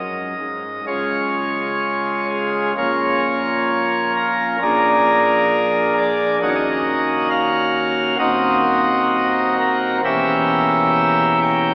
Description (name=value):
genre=classical, chorale-style piece for pipe organ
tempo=60-68 BPM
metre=4/4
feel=rubato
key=Db major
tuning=A4 = 440 Hz
part: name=pipe organ, principal chorus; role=solo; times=0.0-11.7 s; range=Eb1 to G5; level=-18 LUFS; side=equal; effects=none
room=wet church reverb, RT60 3.8 s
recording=recorded in a church or concert hall, vinyl crackle, AM radio sound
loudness=-18 LUFS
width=mono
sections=0.9-11.7 A section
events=none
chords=0.0 N.C.; 0.9 Db; 2.8 Bbm; 4.6 Bb7; 6.4 Ebm7; 8.2 Cm7b5/Eb; 10.1 Edim7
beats=| 0.87 1.82 2.77 3.69 | 4.62 5.53 6.42 7.31 | 8.20 9.10 10.05 10.97